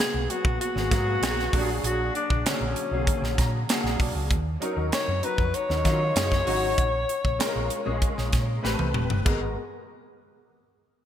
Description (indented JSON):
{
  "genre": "polished 1980s jazz-funk pop",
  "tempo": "97 BPM",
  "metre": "4/4",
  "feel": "straight",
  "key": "G# dorian",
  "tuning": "A4 = 439 Hz",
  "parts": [
    { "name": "breathy alto saxophone", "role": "melody", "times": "0.0-9.5 s", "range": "C#4 to C#5", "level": "-28 LUFS", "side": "left 2 dB", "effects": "none" },
    { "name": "warm concert grand piano", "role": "accompaniment", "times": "0.0-9.5 s", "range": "D3 to A#5", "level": "-30 LUFS", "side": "equal", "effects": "ensemble chorus" },
    { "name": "crisp fusion drum kit", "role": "drums", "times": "0.0-9.4 s", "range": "china cymbal, hi-hat, kick drum, snare drum, toms", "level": "-26 LUFS", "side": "equal", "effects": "gated reverb" },
    { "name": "hollow-body short-scale fingered electric bass", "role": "bass", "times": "0.1-9.5 s", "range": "E1 to D#3", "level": "-29 LUFS", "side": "equal", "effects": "none" }
  ],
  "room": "light reverb, studio ambience",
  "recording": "bright 1980s-style digital production",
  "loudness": "-23 LUFS",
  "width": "side -10 dB against mid",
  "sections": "0.0-9.3 A section; 9.3-11.1 B section",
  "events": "grand piano fill 3.1-4.3; drum fill 8.6-9.3",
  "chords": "0.0 G#m9; 1.5 A#7alt; 4.3 D#m7; 6.8 A#m7; 8.6 Am9; 9.3 G#m9",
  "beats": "0.59 1.21 | 1.83 2.45 3.07 3.69 | 4.31 4.92 5.54 6.16 | 6.78 7.40 8.02 8.64 | 9.26"
}